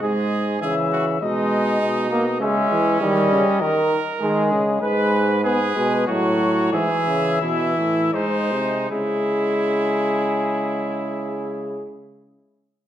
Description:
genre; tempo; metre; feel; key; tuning
classical, imitative canzona for brass ensemble; 76-101 BPM; 3/4; straight; C# minor; A4 = 440 Hz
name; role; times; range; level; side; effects
mellow cornet; melody; 0.0-11.9 s; G#4 to E5; -26 LUFS; left 7 dB; none
bright trumpet; second line; 0.0-11.9 s; C#4 to B4; -26 LUFS; right 4 dB; none
warm trombone; accompaniment; 0.0-11.9 s; D#3 to B3; -23 LUFS; right 1 dB; none
clear euphonium; bass; 0.0-11.9 s; G#2 to E3; -24 LUFS; right 1 dB; none
room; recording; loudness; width
wet recital hall reverb, RT60 1.3 s; dark, warm production; -18 LUFS; side -11 dB against mid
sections
0.0-8.9 A section; 8.9-12.9 B section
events
slowing down 3.9-8.9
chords
0.0 G#5; 0.6 C#m; 1.2 G#m/B; 2.4 C#m; 3.0 D#; 4.2 G#5/D#; 4.8 G#m; 6.1 F#m/A; 6.7 C#m/G#; 8.1 G#; 8.9 C#m

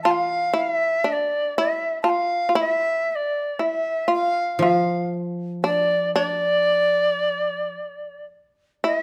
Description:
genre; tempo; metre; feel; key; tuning
japanese traditional, Japanese chamber music; 55-61 BPM; 4/4; rubato; unclear; A4 = 440 Hz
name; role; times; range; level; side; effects
bright reedy long shakuhachi; melody; 0.0-9.0 s; D5 to A5; -24 LUFS; equal; none
shamisen; second line; 0.0-9.0 s; D4 to F4; -26 LUFS; equal; none
koto; accompaniment; 0.0-7.8 s; E3 to F3; -30 LUFS; equal; none
room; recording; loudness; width
light reverb; close, detailed microphones; -22 LUFS; mono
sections
0.0-8.8 A section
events
none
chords
none

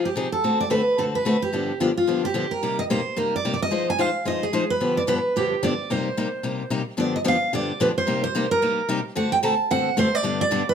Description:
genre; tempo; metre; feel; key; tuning
jazz; 220 BPM; 4/4; swing 58% on 8ths; C minor; A4 = 440 Hz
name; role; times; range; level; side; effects
picked steel-string acoustic guitar; melody; 0.0-10.7 s; F4 to A5; -23 LUFS; right 2 dB; none
picked steel-string acoustic guitar; accompaniment; 0.0-10.6 s; G2 to C5; -24 LUFS; left 3 dB; none
room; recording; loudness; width
moderate club reverb, RT60 0.8 s; none; -20 LUFS; side -7 dB against mid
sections
0.0-7.0 A section; 7.0-10.7 B section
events
none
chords
0.4 D7; 1.5 G7; 2.6 Cm7; 3.7 Fm7; 4.8 G7; 5.9 Cm7; 7.0 G7; 8.1 Cm7; 9.2 D7; 10.2 G

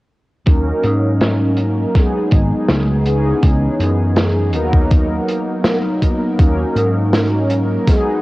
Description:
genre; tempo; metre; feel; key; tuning
vaporwave; 81 BPM; 4/4; straight; unclear; A4 = 440 Hz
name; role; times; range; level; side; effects
mellow synth brass; accompaniment; 0.5-8.2 s; E3 to A#4; -17 LUFS; equal; analog chorus, cassette tape, tape echo
vintage slap bass; bass; 0.5-7.8 s; G#1 to G#2; -18 LUFS; equal; tube saturation
electronic kick drum; drums; 0.5-8.0 s; none; -12 LUFS; equal; overdrive
open jazz drum kit; drums; 0.5-8.0 s; hi-hat, snare drum; -21 LUFS; equal; low-pass filter on hats, low-pass filter on snare, low-pass filter on room
room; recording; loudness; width
light reverb; worn, warbling old tape, cassette tape, warbly pitch drift; -13 LUFS; side -19 dB against mid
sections
0.5-8.2 A section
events
none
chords
0.5 D#m7; 1.9 G#m7; 3.1 C#m9; 4.5 Bmaj7/D#; 6.4 D#m7

